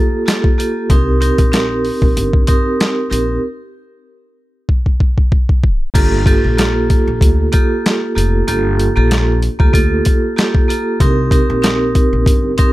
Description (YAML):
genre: hip hop, boom-bap hip-hop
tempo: 95 BPM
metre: 4/4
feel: swing 55% on 16ths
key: G minor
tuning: A4 = 440 Hz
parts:
  - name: vibraphone with medium hard mallets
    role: accompaniment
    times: 0.0-12.7 s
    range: Bb3 to Bb4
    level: -16 LUFS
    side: right 1 dB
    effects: plate reverb
  - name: boom bap sampler-style drum kit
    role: drums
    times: 0.3-12.7 s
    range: crash cymbal, hi-hat, kick drum, snare drum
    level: -13 LUFS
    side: equal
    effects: none
  - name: upright bass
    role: bass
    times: 0.9-12.5 s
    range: F1 to D2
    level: -17 LUFS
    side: equal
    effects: none
room: light reverb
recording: tape stop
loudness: -12 LUFS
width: side -17 dB against mid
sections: 0.0-6.0 A section; 6.0-12.7 B section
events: break 3.4-6.0; drum fill 4.7-6.0; tape stop 5.6-6.0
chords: 0.0 Gm9; 0.9 Cm7; 6.0 Gm9; 11.0 Cm7